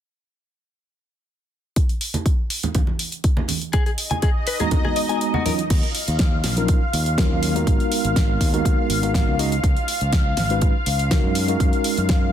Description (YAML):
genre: nu-disco, nu disco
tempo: 122 BPM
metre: 4/4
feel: straight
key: unclear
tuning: A4 = 440 Hz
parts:
  - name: electronic kick drum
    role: drums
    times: 1.8-12.2 s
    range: none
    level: -20 LUFS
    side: equal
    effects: none
  - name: pop drum kit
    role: drums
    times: 1.8-12.2 s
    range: crash cymbal, hi-hat, snare drum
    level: -26 LUFS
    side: right 1 dB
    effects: none
  - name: congas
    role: percussion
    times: 2.1-5.6 s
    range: none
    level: -26 LUFS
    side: right 3 dB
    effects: none
  - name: lush unison pad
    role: sustained chords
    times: 4.0-12.3 s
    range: Eb5 to F5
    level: -27 LUFS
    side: left 1 dB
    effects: chorus, phaser, sidechain pumping
  - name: direct-recorded clean electric guitar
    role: riff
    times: 3.7-5.5 s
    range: Gb4 to Ab5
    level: -28 LUFS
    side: left 5 dB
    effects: lush chorus, tape echo
  - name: mellow tine electric piano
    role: accompaniment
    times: 4.6-12.3 s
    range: Gb3 to Bb5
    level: -25 LUFS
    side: equal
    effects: medium stereo tremolo, sidechain pumping, tape echo
  - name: overdriven fingered electric bass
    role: bass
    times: 5.7-12.3 s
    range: Ab1 to Gb2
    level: -24 LUFS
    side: equal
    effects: tube saturation
room: little or no reverb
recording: dense, heavily limited modern master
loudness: -18 LUFS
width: side -10 dB against mid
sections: 1.8-5.7 A section; 5.7-12.3 B section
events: kick drops out 5.2-5.7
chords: 1.8 N.C.; 3.7 Abm9; 5.5 Ebm9; 7.7 Abm9; 11.4 Gb69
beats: | 1.77 2.26 2.75 3.24 | 3.73 4.22 4.72 5.21 | 5.70 6.19 6.68 7.18 | 7.67 8.16 8.65 9.14 | 9.63 10.13 10.62 11.11 | 11.60 12.09